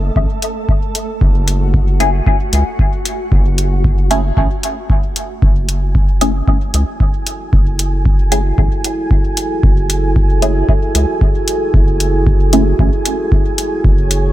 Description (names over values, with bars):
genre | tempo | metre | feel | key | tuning
dub techno | 114 BPM | 4/4 | swing 56% on 16ths | F# minor | A4 = 440 Hz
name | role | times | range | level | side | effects
round analog bass | bass | 0.0-14.3 s | F#1 to C#2 | -15 LUFS | equal | sidechain pumping
flickering grainy texture | texture | 0.0-14.3 s | A3 to G#5 | -26 LUFS | right 3 dB | built-in reverb, sidechain pumping
electronic kick drum | drums | 0.2-14.0 s | none | -13 LUFS | equal | none
electronic hi-hat | drums | 0.4-14.2 s | none | -18 LUFS | left 1 dB | none
filtered dub chord stab | stabs | 2.0-12.6 s | A3 to G#4 | -20 LUFS | left 1 dB | phaser, dub echo
dark analog pad | sustained chords | 7.2-14.3 s | E4 to C#5 | -20 LUFS | right 1 dB | chorus, sidechain pumping
room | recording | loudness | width
digital ambience | none | -12 LUFS | side -14 dB against mid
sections
0.0-14.3 A section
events
none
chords
0.0 F#m9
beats
0.16 0.69 | 1.21 1.74 2.27 2.79 | 3.32 3.85 4.37 4.90 | 5.42 5.95 6.48 7.00 | 7.53 8.05 8.58 9.11 | 9.63 10.16 10.69 11.21 | 11.74 12.27 12.79 13.32 | 13.85